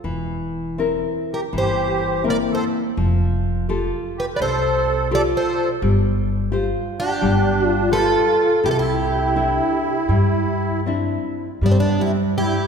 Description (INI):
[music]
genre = fado-style ballad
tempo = 83 BPM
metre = 4/4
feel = uneven beats, rubato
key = C major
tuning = A4 = 438 Hz
[part]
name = nylon-string guitar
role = accompaniment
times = 0.0-12.7 s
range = C3 to C5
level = -23 LUFS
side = left 2 dB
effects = none
[part]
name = upright bass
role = bass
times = 0.0-12.6 s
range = E1 to G2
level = -23 LUFS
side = equal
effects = none
[part]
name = picked plugged-in twelve-string acoustic guitar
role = melody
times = 1.3-12.7 s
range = C4 to D5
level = -22 LUFS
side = equal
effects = none
[part]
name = musette accordion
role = second line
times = 1.3-12.7 s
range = A3 to B4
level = -25 LUFS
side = right 4 dB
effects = none
[sound]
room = wet concert hall reverb, RT60 2.3 s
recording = recorded in a church or concert hall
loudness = -18 LUFS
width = side -6 dB against mid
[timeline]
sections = 0.0-11.6 A section; 11.6-12.7 B section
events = none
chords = 0.0 C7/E; 3.0 Fadd9; 5.8 G7sus4; 7.2 G7; 8.6 Cadd9; 11.6 G5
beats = | 0.04 0.80 1.53 2.26 | 2.98 3.69 4.41 5.12 | 5.83 6.53 7.23 7.94 | 8.65 9.35 10.08 10.85 | 11.61 12.35